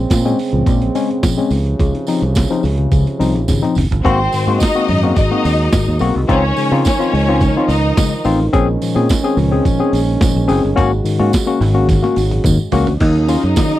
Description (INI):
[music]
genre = disco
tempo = 107 BPM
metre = 4/4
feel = straight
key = unclear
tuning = A4 = 438 Hz
[part]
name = dark French horn section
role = sustained chords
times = 0.0-13.8 s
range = C3 to Gb4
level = -21 LUFS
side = right 3 dB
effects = none
[part]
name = fingered electric bass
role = bass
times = 0.0-13.5 s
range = Gb1 to Db3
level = -16 LUFS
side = right 1 dB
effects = none
[part]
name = boom bap sampler-style drum kit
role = drums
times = 0.1-13.8 s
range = crash cymbal, hi-hat, kick drum, snare drum, toms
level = -17 LUFS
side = right 1 dB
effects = overdrive
[part]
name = tambourine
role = percussion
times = 0.1-13.7 s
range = none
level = -32 LUFS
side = right 9 dB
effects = none
[part]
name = barky tine electric piano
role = accompaniment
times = 0.3-13.7 s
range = Ab2 to Ab4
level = -17 LUFS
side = left 4 dB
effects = none
[part]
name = clear studio string section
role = second line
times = 4.0-8.2, 13.0-13.8 s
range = C4 to Eb5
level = -19 LUFS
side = left 1 dB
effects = none
[sound]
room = little or no reverb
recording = dry, close 1970s-style studio recording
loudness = -12 LUFS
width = side -14 dB against mid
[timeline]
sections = 0.0-4.0 A section; 4.0-13.0 B section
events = drum fill 3.5-4.0, 11.9-13.0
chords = 0.0 Bbm9; 1.5 Dbmaj7; 4.0 Ab7; 6.3 Dbmaj9; 8.5 Bbm9; 10.8 Ab7sus4; 13.0 Ebm7